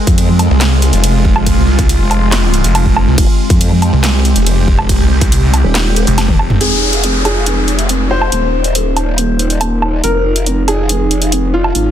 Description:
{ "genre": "heavy wobble dubstep", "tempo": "140 BPM", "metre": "4/4", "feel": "half-time", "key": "F minor", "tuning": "A4 = 440 Hz", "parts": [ { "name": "evolving wavetable pad", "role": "sustained chords", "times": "0.0-11.9 s", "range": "F3 to G4", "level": "-18 LUFS", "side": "right 1 dB", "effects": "chorus, built-in reverb, sidechain pumping" }, { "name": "growl bass", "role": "bass", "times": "0.1-0.5, 3.2-11.9 s", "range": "Eb1 to F2", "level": "-14 LUFS", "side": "equal", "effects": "chorus, overdrive" }, { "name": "big-room dance drum kit", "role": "drums", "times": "0.1-11.8 s", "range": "handclaps, hi-hat, ride cymbal, snare drum, toms, woodblock", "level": "-17 LUFS", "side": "right 1 dB", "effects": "none" }, { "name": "electronic kick drum", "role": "drums", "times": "0.1-6.4 s", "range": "none", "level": "-13 LUFS", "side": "equal", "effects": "none" }, { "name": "snarling distorted saw bass", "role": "bass", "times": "0.5-6.6 s", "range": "F1 to C2", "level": "-12 LUFS", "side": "equal", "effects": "distortion, overdrive" }, { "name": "warm baby grand piano", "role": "melody", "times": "6.6-11.9 s", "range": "F4 to C5", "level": "-18 LUFS", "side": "left 1 dB", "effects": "tape echo" }, { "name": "downlifter", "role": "sound effects", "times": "6.6-10.0 s", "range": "none", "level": "-19 LUFS", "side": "left 2 dB", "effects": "none" } ], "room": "light reverb, digital ambience", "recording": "dense, heavily limited modern master", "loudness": "-10 LUFS", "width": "side -10 dB against mid", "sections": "0.0-6.6 A section; 6.6-11.9 B section", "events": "drop 0.0-6.6; drum fill 6.2-6.6; filter sweep on ambient pad 6.6-11.9", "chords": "0.0 Fm; 8.3 Eb; 10.0 Dbadd9/F" }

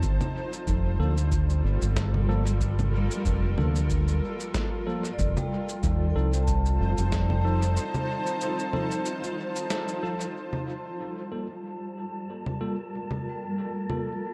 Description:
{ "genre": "ambient dub", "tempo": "93 BPM", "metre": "4/4", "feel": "swing 55% on 16ths", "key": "G minor", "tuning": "A4 = 445 Hz", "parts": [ { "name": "granular cloud pad", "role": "sustained chords", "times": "0.0-14.3 s", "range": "G3 to A5", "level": "-35 LUFS", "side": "equal", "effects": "built-in reverb" }, { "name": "vibraphone with medium mallets", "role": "arpeggios", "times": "0.0, 5.1-14.3 s", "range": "G3 to A5", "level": "-38 LUFS", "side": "equal", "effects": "low-pass filter, dub echo" }, { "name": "fingered electric bass", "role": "bass", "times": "0.0-7.8 s", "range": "F1 to Eb2", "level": "-27 LUFS", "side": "equal", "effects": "none" }, { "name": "electronic cabasa, congas and snare drum", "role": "drums", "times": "0.0-14.0 s", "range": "none", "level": "-37 LUFS", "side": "equal", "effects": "dub echo" }, { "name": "electronic kick drum", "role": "drums", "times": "0.0-7.3 s", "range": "none", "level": "-33 LUFS", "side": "equal", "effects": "none" }, { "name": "tine electric piano", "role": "stabs", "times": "1.0-14.1 s", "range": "F3 to A4", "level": "-39 LUFS", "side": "equal", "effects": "dub echo" }, { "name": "wind-like tuned noise texture", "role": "texture", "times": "11.1-14.3 s", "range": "A5", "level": "-44 LUFS", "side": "equal", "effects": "built-in reverb" } ], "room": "light reverb, digital ambience", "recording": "none", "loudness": "-28 LUFS", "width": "mono", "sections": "0.0-10.4 A section; 10.4-14.3 B section", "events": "break 7.8-10.4; band accent 9.7-10.0; filter sweep on ambient pad 10.4-14.3; filter sweep on vibraphone 10.4-14.3", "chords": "0.0 Gm9; 5.2 F7; 10.4 Gm9" }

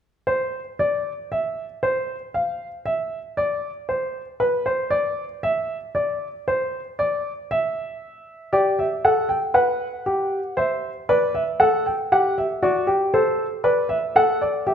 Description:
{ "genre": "classical, baroque-style 3-part fugue for grand piano", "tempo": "58 BPM", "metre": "4/4", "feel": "straight", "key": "unclear", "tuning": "A4 = 436 Hz", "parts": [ { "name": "warm baby grand piano", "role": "solo", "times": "0.3-14.7 s", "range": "F#4 to G5", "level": "-20 LUFS", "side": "equal", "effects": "none" } ], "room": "moderate recital hall reverb, RT60 1.6 s", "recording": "dark, warm production", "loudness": "-20 LUFS", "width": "side -8 dB against mid", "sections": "0.3-14.7 A section", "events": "none", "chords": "0.3 N.C.; 8.5 G; 10.6 C; 12.6 D/F#" }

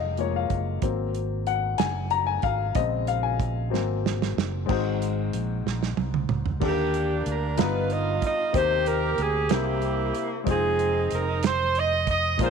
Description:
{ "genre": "slow gospel", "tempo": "62 BPM (dotted quarters)", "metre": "6/8", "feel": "straight", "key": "unclear", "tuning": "A4 = 440 Hz", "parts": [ { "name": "warm upright piano", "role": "accompaniment", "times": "0.0-12.5 s", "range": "G2 to Bb5", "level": "-28 LUFS", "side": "left 13 dB", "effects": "none" }, { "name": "fingered electric bass", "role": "bass", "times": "0.0-12.5 s", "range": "F1 to Eb2", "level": "-29 LUFS", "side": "right 2 dB", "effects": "none" }, { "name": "warm soul drum kit", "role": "drums", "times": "0.2-12.5 s", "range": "crash cymbal, hi-hat, kick drum, snare drum, toms", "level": "-29 LUFS", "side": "right 7 dB", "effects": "none" }, { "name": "clear saxophone section", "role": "melody", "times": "6.6-12.5 s", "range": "Bb3 to D#5", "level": "-24 LUFS", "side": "right 3 dB", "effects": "none" } ], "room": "moderate plate reverb, RT60 2.2 s", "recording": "1960s-style stereo with parts hard left and right", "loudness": "-23 LUFS", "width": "side -6 dB against mid", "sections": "0.0-4.7 A section; 4.7-6.6 B section; 6.6-12.5 C section", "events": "upright piano solo 0.0-4.7; drum fill 3.7-4.7, 5.7-6.6", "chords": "0.0 Gbmaj7; 0.8 Ab7; 2.8 Bbm7; 3.7 Ab7; 6.6 Ebmaj7; 7.6 G7alt; 8.5 Cm7/Eb; 9.5 C7; 10.5 Fm7" }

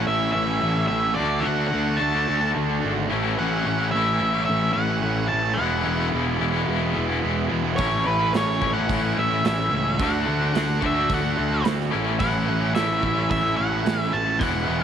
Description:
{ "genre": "classic rock", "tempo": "109 BPM", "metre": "4/4", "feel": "straight", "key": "A major", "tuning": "A4 = 440 Hz", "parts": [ { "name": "octave-fuzz lead guitar", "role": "melody", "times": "0.0-14.8 s", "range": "B4 to A5", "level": "-25 LUFS", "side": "equal", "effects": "distortion, tape echo" }, { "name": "cranked stack guitar", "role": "riff", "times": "0.0-14.8 s", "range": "A2 to F#4", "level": "-27 LUFS", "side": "right 10 dB", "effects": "overdrive" }, { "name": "overdriven semi-hollow guitar", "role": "riff", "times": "0.0-14.8 s", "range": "E2 to A4", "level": "-27 LUFS", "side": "left 11 dB", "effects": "harmonic tremolo" }, { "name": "fuzz picked electric bass", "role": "bass", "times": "0.0-14.8 s", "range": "E1 to D2", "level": "-26 LUFS", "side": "equal", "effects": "overdrive" }, { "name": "big rock drum kit", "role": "drums", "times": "7.8-14.5 s", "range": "hi-hat, kick drum, snare drum", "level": "-29 LUFS", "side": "right 4 dB", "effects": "none" } ], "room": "light reverb, small room reverb", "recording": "1960s-style stereo with parts hard left and right", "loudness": "-20 LUFS", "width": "side -8 dB against mid", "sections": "0.0-14.8 A section", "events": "none", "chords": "0.0 A; 1.2 D; 3.1 A6; 5.6 E; 7.8 A; 10.0 D; 11.9 A6" }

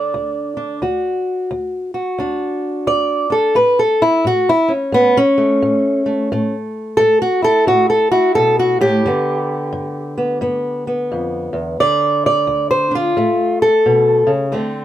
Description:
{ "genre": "acoustic country blues, solo or duo", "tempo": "88 BPM", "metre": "4/4", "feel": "swing 62% on 8ths", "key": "unclear", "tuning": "A4 = 438 Hz", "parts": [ { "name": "fingerpicked old ladder-braced acoustic guitar", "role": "solo", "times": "0.0-14.8 s", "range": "D2 to D5", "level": "-14 LUFS", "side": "equal", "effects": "none" } ], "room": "light reverb", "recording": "none", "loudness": "-14 LUFS", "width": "side -12 dB against mid", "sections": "0.0-14.5 A section", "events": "steel-string acoustic guitar solo 0.0-14.5", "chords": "0.0 D; 3.6 A; 9.0 G7; 11.8 N.C.; 13.2 A" }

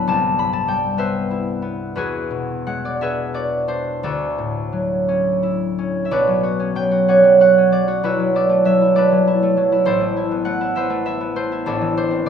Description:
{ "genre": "classical, solo harp piece", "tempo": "55-69 BPM (dotted quarters)", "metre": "6/8", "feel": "rubato", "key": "D mixolydian, B minor from 6.1 s", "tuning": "A4 = 440 Hz", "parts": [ { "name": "concert harp", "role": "solo", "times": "0.0-12.3 s", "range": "A1 to B5", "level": "-16 LUFS", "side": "right 1 dB", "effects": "none" } ], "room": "moderate recital hall reverb, RT60 1.6 s", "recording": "none", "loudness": "-16 LUFS", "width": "side -7 dB against mid", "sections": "0.0-6.1 A section; 6.1-12.3 B section", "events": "none", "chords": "0.1 Cmaj7; 1.9 E9; 4.0 Dmaj9; 6.1 Bmadd9; 8.0 D69/B; 9.9 Amadd9; 11.7 C69/A" }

